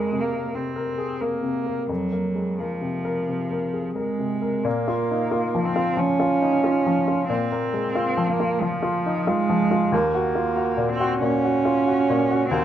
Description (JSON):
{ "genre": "neoclassical piano and strings", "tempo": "91 BPM", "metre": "4/4", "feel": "rubato", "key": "Bb minor", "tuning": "A4 = 440 Hz", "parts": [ { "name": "muted cello", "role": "second line", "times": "0.0-12.6 s", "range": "F3 to Db4", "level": "-24 LUFS", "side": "right 4 dB", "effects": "none" }, { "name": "warm upright piano", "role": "accompaniment", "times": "0.0-12.6 s", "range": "Eb2 to Bb4", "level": "-23 LUFS", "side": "left 3 dB", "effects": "none" } ], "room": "light reverb", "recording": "rough home demo mix", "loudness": "-20 LUFS", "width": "side -10 dB against mid", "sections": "0.0-4.7 A section; 4.7-12.6 A section", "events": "none", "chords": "0.0 Fsus4; 4.7 Bbm; 9.9 Ebm" }